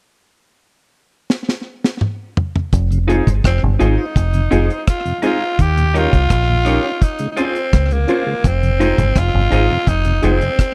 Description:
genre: roots reggae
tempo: 84 BPM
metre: 4/4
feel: straight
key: F minor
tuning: A4 = 442 Hz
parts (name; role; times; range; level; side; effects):
- deep reggae drum kit; drums; 1.3-10.7 s; hi-hat, kick drum, rim click, snare drum, toms; -19 LUFS; equal; none
- deep dub fingered electric bass; bass; 2.7-10.4 s; F1 to Eb2; -18 LUFS; equal; none
- mellow tonewheel organ; accompaniment; 2.9-10.5 s; Eb2 to F4; -26 LUFS; equal; slow rotary speaker, slapback echo
- electric guitar through a small old amp; accompaniment; 3.1-10.4 s; Eb4 to Db5; -27 LUFS; equal; tape echo
- reed electric piano; stabs; 3.1-10.4 s; C4 to C5; -22 LUFS; equal; fast tremolo
- growling tenor saxophone; melody; 3.5-10.7 s; Bb3 to G4; -22 LUFS; equal; tape echo
room: small room ambience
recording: dry, close 1970s-style studio recording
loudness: -16 LUFS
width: mono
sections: 0.0-2.7 A section; 2.7-8.4 B section; 8.4-10.7 C section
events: drum fill 1.3-2.7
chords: 0.0 N.C.; 2.7 Fm7; 5.6 Eb7; 7.0 Dbmaj7; 8.4 Fm7

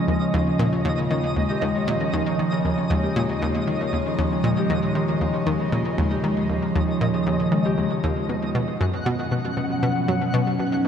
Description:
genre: ambient, sequencer-driven space music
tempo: 117 BPM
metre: 4/4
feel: straight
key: unclear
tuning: A4 = 439 Hz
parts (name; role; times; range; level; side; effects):
- evolving wavetable pad; sustained chords; 0.0-10.9 s; B2 to D#4; -24 LUFS; right 1 dB; phaser, built-in reverb
- Celtic harp; arpeggios; 0.0-10.9 s; B2 to Db5; -28 LUFS; left 3 dB; auto-pan, tape echo, shimmer reverb
- twinkling granular texture; texture; 0.0-10.9 s; Eb5 to F#5; -30 LUFS; equal; built-in reverb, shimmer reverb
- analog pluck; riff; 0.1-10.9 s; Eb2 to Eb3; -25 LUFS; equal; chorus, tape echo
room: wet cathedral reverb, RT60 7.0 s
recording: in a vast, echoing space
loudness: -20 LUFS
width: side -8 dB against mid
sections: 0.0-8.3 A section; 8.3-10.9 B section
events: none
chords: 0.1 Ebsus4; 8.3 B

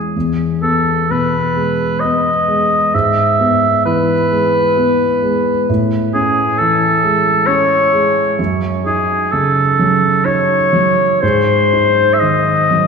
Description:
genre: classical, romantic duo for oboe and grand piano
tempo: 65 BPM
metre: 3/4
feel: uneven beats, rubato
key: unclear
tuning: A4 = 440 Hz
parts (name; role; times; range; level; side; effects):
- warm oboe; melody; 0.0-12.9 s; G#4 to E5; -13 LUFS; left 1 dB; none
- warm concert grand piano; accompaniment; 0.0-12.9 s; E2 to D#4; -16 LUFS; right 1 dB; none
room: wet church reverb, RT60 3.1 s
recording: recorded in a church or concert hall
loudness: -12 LUFS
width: side -5 dB against mid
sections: 0.0-12.9 A section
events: none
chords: 0.1 E; 2.9 E/G#; 5.7 Amaj7; 8.4 D#m7b5/F#; 11.2 G#

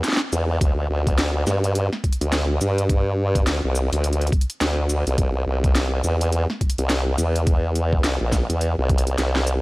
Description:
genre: glitch hop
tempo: 105 BPM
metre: 4/4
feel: swing 61% on 16ths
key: unclear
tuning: A4 = 441 Hz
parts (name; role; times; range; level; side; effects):
- formant-sweep wobble bass; bass; 0.0-9.6 s; Bb1 to G2; -20 LUFS; equal; chorus, tube saturation
- drum and bass drum kit; drums; 0.0-9.6 s; hi-hat, shaker, snare drum; -26 LUFS; equal; overdrive
- electronic kick drum; drums; 0.6-9.0 s; none; -19 LUFS; equal; overdrive
room: little or no reverb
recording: dry, gritty hardware recording, vinyl crackle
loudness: -19 LUFS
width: side -22 dB against mid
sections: 0.0-9.6 A section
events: drum fill 9.2-9.6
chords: none

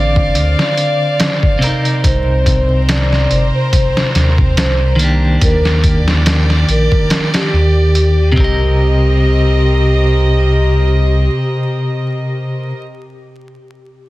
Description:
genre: trip hop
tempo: 71 BPM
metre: 4/4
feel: swing 55% on 16ths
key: C minor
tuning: A4 = 440 Hz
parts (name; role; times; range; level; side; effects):
- pure breathy sine lead; melody; 0.0-12.8 s; G4 to D5; -20 LUFS; equal; chorus, tape echo
- clean electric guitar; accompaniment; 0.0-12.8 s; C3 to Eb5; -17 LUFS; equal; tremolo
- warm studio violin section; sustained chords; 0.0-12.8 s; C4 to F5; -22 LUFS; right 1 dB; none
- soft dub sub bass; bass; 0.0-11.3 s; G1 to Eb2; -14 LUFS; equal; none
- trip hop sampler-style drum kit; drums; 0.2-8.6 s; hi-hat, kick drum, snare drum; -15 LUFS; equal; none
room: little or no reverb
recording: dense, heavily limited modern master, vinyl crackle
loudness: -11 LUFS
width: side -18 dB against mid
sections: 0.0-8.8 A section; 8.8-12.2 B section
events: none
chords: 0.0 Dm7; 2.0 Cm7; 5.4 Ebmaj7; 8.4 Cm7

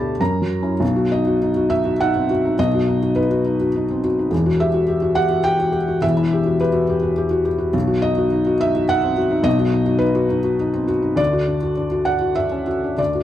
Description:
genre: neoclassical minimalist piano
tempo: 104 BPM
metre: 3/4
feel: rubato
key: unclear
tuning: A4 = 439 Hz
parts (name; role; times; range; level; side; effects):
- felt-muted upright piano; solo; 0.0-13.2 s; E1 to B5; -16 LUFS; left 1 dB; none
room: light reverb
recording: band playing live in one room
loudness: -16 LUFS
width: side -12 dB against mid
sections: 0.8-13.2 A section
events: none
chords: 0.2 F#7; 0.8 B; 4.3 Emadd9; 7.7 B; 11.2 D

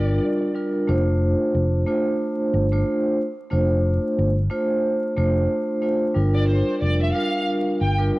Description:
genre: hip hop, boom-bap hip-hop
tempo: 91 BPM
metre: 4/4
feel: swing 57% on 16ths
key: unclear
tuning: A4 = 444 Hz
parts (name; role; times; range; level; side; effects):
- dark studio violin section; melody; 0.0-0.2, 6.3-8.0 s; C5 to G5; -27 LUFS; equal; high-pass filter, low-pass filter, cassette tape, analog delay
- vibraphone with soft mallets; accompaniment; 0.0-8.2 s; G3 to C5; -21 LUFS; equal; high-pass filter, low-pass filter, cassette tape
- fingered electric bass; bass; 0.0-8.1 s; F1 to G1; -20 LUFS; equal; none
room: light reverb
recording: home recording on cassette, vinyl crackle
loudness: -19 LUFS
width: side -20 dB against mid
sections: 0.0-8.2 A section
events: none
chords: 0.0 Gm7; 0.9 F6; 6.2 Gm7

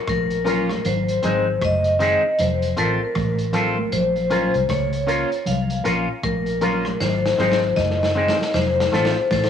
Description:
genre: roots reggae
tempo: 78 BPM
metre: 4/4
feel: swing 60% on 16ths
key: Bb minor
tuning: A4 = 440 Hz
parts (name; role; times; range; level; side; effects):
- vibraphone with hard mallets; melody; 0.0-9.5 s; A4 to F5; -22 LUFS; left 2 dB; cassette tape, dub echo
- vintage muted fingered electric bass; bass; 0.1-9.5 s; F1 to Db2; -25 LUFS; left 1 dB; none
- crunchy breakbeat drum kit; drums; 0.1-9.5 s; hi-hat, kick drum, rim click, snare drum; -28 LUFS; equal; cassette tape
- congas; percussion; 0.1-9.5 s; none; -28 LUFS; right 2 dB; none
- bright concert grand piano; stabs; 0.4-9.1 s; C4 to Bb4; -27 LUFS; left 5 dB; cassette tape
- electric guitar with an envelope filter; accompaniment; 0.5-9.2 s; Eb3 to F4; -27 LUFS; right 3 dB; cassette tape, dub echo
room: moderate spring reverb, RT60 2.4 s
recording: home recording on cassette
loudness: -18 LUFS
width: side -8 dB against mid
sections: 0.0-9.5 A section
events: drum fill 7.0-9.5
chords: 0.0 Bbm; 0.8 Ab; 2.4 F; 3.9 Bbm; 7.0 Ab; 8.5 F

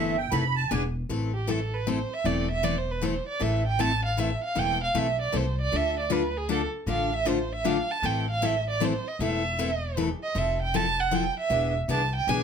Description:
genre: acoustic string swing (jazz manouche)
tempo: 156 BPM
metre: 3/4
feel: swing 64% on 8ths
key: A minor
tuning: A4 = 439 Hz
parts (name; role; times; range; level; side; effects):
- musette accordion; second line; 0.0-0.8 s; E5 to B5; -27 LUFS; right 9 dB; none
- picked steel-string acoustic guitar; accompaniment; 0.0-12.4 s; D3 to A4; -29 LUFS; left 5 dB; none
- upright bass; bass; 0.0-12.4 s; E1 to D2; -30 LUFS; equal; none
- warm violin; melody; 1.3-12.4 s; G4 to A5; -28 LUFS; right 4 dB; plate reverb
room: moderate studio ambience, RT60 0.5 s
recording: none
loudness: -24 LUFS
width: side -7 dB against mid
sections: 0.0-1.1 A section; 1.1-12.4 A section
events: accordion solo 0.0-1.1; violin solo 1.1-12.4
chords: 0.0 Am; 0.7 E7; 1.1 Am; 5.7 Dm; 8.0 Am; 10.4 Fmaj7; 11.5 E7

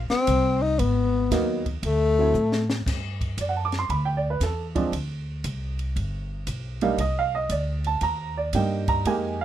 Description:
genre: jazz, small-group swing and bop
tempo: 116 BPM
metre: 4/4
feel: swing 67% on 8ths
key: unclear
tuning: A4 = 440 Hz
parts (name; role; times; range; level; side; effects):
- upright bass; bass; 0.0-9.4 s; G1 to A2; -27 LUFS; equal; none
- breathy tenor saxophone; melody; 0.1-2.7 s; A3 to Eb4; -22 LUFS; left 4 dB; none
- compact cocktail drum kit; drums; 0.1-9.2 s; crash cymbal, hi-hat, kick drum, ride cymbal, snare drum; -33 LUFS; equal; none
- warm upright piano; accompaniment; 1.3-9.4 s; F3 to D6; -25 LUFS; right 4 dB; none
room: little or no reverb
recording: minimal, uncompressed stereo recording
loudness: -22 LUFS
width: side -11 dB against mid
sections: 0.0-2.9 A section; 2.9-9.4 B section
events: drum fill 2.3-2.9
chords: 0.0 F7(no3) (rootless); 0.8 Abm7; 1.8 D7; 2.9 G5; 4.9 Csus2; 6.0 G; 7.0 Cm7

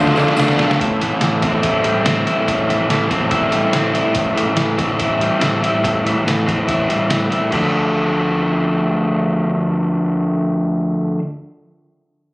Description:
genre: indie rock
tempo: 142 BPM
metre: 4/4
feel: straight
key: D minor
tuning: A4 = 439 Hz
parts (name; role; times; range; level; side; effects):
- crunchy overdriven guitar; riff; 0.0-11.2 s; A2 to F4; -16 LUFS; equal; none
- raw garage guitar; riff; 0.0-4.2 s; F3 to A4; -24 LUFS; right 3 dB; overdrive, lush chorus, analog delay
- growling picked electric bass; bass; 0.0-11.2 s; A1 to D3; -22 LUFS; equal; overdrive
- trip hop sampler-style drum kit; drums; 0.1-7.6 s; hi-hat, kick drum, ride cymbal, snare drum; -22 LUFS; equal; overdrive
- tambourine; percussion; 0.2-0.6 s; none; -36 LUFS; right 2 dB; none
room: light reverb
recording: recorded on a phone in the room, studio reverb, compression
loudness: -15 LUFS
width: side -24 dB against mid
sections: 0.8-7.5 A section; 7.5-10.9 B section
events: drum fill 0.0-0.8; kick and snare drop out 7.3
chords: 0.0 Dm7; 0.8 Am7; 7.5 Dm

